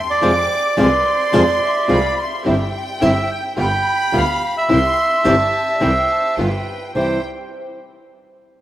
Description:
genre	tango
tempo	107 BPM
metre	4/4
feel	rubato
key	C major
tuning	A4 = 440 Hz
part	clear studio violin section	second line	0.0-7.2 s	G5 to D6	-25 LUFS	left 3 dB	none
part	bright double bass	bass	0.0-7.2 s	G1 to F2	-23 LUFS	right 1 dB	none
part	bandoneon	melody	0.1-7.2 s	C5 to G5	-18 LUFS	right 2 dB	none
part	flamenco guitar	accompaniment	0.2-7.2 s	C3 to F4	-20 LUFS	left 1 dB	none
part	bright studio string section	stabs	0.2-7.2 s	B3 to Ab4	-30 LUFS	right 2 dB	none
part	bright reedy silver concert flute	second line	0.8-7.2 s	G4 to F5	-30 LUFS	right 1 dB	none
room	wet plate reverb, RT60 2.7 s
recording	rough home demo mix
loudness	-15 LUFS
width	side -13 dB against mid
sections	0.0-7.0 A section; 7.0-8.6 B section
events	none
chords	0.2 Fm; 2.5 C/G; 3.6 G7; 4.7 C; 6.4 G7; 7.0 C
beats	| 0.22 0.78 1.34 1.90 | 2.45 3.01 3.57 4.13 | 4.69 5.25 5.82 6.38 | 6.95

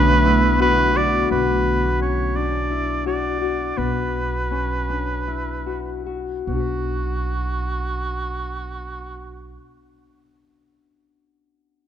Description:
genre	contemporary instrumental, chamber music in an uneven meter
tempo	145-173 BPM (eighths)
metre	7/8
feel	straight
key	B minor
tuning	A4 = 441 Hz
part	clear oboe	melody	0.0-9.6 s	F#4 to D5	-23 LUFS	right 2 dB	none
part	glassy FM pad	sustained chords	0.0-1.3 s	D3 to B3	-24 LUFS	right 1 dB	ensemble chorus, built-in reverb
part	Celtic harp	arpeggios	0.0-9.7 s	B3 to B4	-25 LUFS	left 9 dB	none
part	upright bass	bass	0.0-9.6 s	B1	-25 LUFS	right 2 dB	none
room	moderate concert hall reverb, RT60 2.4 s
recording	none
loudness	-19 LUFS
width	side -9 dB against mid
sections	0.0-1.3 A section; 1.3-6.5 B section; 6.5-9.4 C section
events	slowing down 1.3-6.5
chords	0.0 Bm7; 1.3 Bmadd9; 6.5 Bm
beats	0.26 0.60 0.96 | 1.31 1.66 2.01 2.36 2.71 3.06 3.42 | 3.78 4.14 4.52 4.89 5.28 5.67 6.07 | 6.48 6.89 7.30 7.71 8.12 8.53 8.95

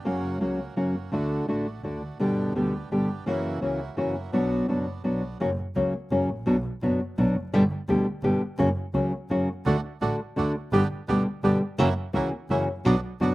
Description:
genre	tango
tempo	169 BPM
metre	3/4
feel	rubato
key	unclear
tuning	A4 = 440 Hz
part	nylon-string guitar	accompaniment	0.0-13.3 s	B2 to G4	-24 LUFS	left 1 dB	none
part	bandoneon	stabs	0.0-5.4, 9.6-13.3 s	A3 to G4	-35 LUFS	right 6 dB	slapback echo
part	clear double bass	bass	0.0-13.3 s	E#1 to D2	-32 LUFS	right 1 dB	none
room	little or no reverb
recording	recorded outdoors, with no room sound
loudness	-24 LUFS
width	side -18 dB against mid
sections	0.0-5.4 A section; 5.4-13.3 A section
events	none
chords	0.1 F#; 1.1 D; 2.2 G; 3.3 F#7; 4.3 Bm; 5.4 F#; 6.5 Bm; 7.5 G; 8.6 F#; 9.7 D; 10.7 G; 11.8 F#7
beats	| 0.06 0.41 0.77 | 1.13 1.49 1.84 | 2.20 2.55 2.91 | 3.26 3.62 3.97 | 4.33 4.68 5.04 | 5.40 5.75 6.11 | 6.47 6.82 7.18 | 7.53 7.88 8.24 | 8.59 8.95 9.30 | 9.66 10.02 10.37 | 10.73 11.08 11.44 | 11.79 12.14 12.50 | 12.86 13.21

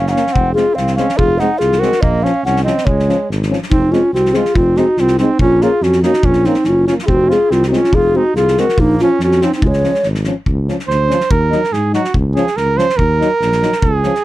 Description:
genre	balkan folk, Balkan brass band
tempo	142 BPM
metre	2/4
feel	straight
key	unclear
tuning	A4 = 440 Hz
part	mellow hollow round clay ocarina	melody	0.0-10.1 s	Eb4 to Gb5	-14 LUFS	left 1 dB	none
part	warm flugelhorn	second line	0.0-14.2 s	Ab3 to C5	-18 LUFS	right 4 dB	none
part	mellow tuba	bass	0.0-14.1 s	F1 to Ab2	-18 LUFS	equal	none
part	mellow trombone	accompaniment	0.1-14.1 s	C4 to Eb4	-20 LUFS	left 6 dB	none
part	warm euphonium	accompaniment	0.1-14.1 s	F3 to Bb3	-22 LUFS	right 4 dB	none
part	loose indie drum kit	percussion	0.1-14.2 s	kick drum, snare drum	-20 LUFS	equal	none
room	little or no reverb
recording	none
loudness	-11 LUFS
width	side -16 dB against mid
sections	0.0-3.7 A section; 3.7-10.5 A section; 10.5-14.2 B section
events	flugelhorn solo 10.5-14.2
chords	0.4 Fm; 2.0 Bbm; 2.9 Db; 3.7 Fm; 5.4 Bbm; 7.1 Fm; 8.8 Bbm; 9.6 Db; 11.3 Ebm; 12.2 Db; 13.0 Ebm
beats	| 0.35 0.77 | 1.19 1.61 | 2.04 2.46 | 2.88 3.30 | 3.72 4.14 | 4.56 4.98 | 5.40 5.82 | 6.25 6.67 | 7.09 7.51 | 7.93 8.35 | 8.78 9.20 | 9.62 10.04 | 10.46 10.89 | 11.31 11.73 | 12.15 12.58 | 13.00 13.42 | 13.84

